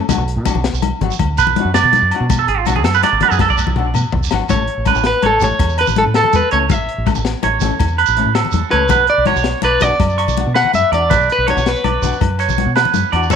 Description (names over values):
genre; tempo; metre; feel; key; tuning
highlife guitar band; 109 BPM (dotted quarters); 12/8; straight; unclear; A4 = 440 Hz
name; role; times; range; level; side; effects
nylon-string guitar; accompaniment; 0.0-13.4 s; E3 to A4; -25 LUFS; left 10 dB; none
deep dub fingered electric bass; bass; 0.1-13.4 s; G#1 to B2; -19 LUFS; right 1 dB; none
crunchy breakbeat drum kit; drums; 0.1-13.4 s; hi-hat, kick drum, snare drum, toms; -22 LUFS; left 3 dB; none
agogo bells; percussion; 0.1-13.4 s; none; -26 LUFS; left 9 dB; none
congas; percussion; 0.1-13.4 s; none; -22 LUFS; left 11 dB; none
shekere; percussion; 0.1-13.4 s; none; -28 LUFS; right 8 dB; none
clean electric guitar; arpeggios; 1.4-13.4 s; F4 to C#6; -17 LUFS; right 11 dB; tape echo
electric guitar at the edge of break-up; melody; 4.5-13.4 s; A4 to F#5; -16 LUFS; left 2 dB; none
room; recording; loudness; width
moderate echo chamber reverb, RT60 1.4 s, small room ambience; 1960s-style stereo with parts hard left and right; -12 LUFS; side -7 dB against mid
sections
0.0-4.5 A section; 4.5-13.4 B section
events
clean electric guitar solo 0.0-4.5; drum fill 3.4-4.5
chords
0.1 Bm; 4.5 A; 8.9 Bm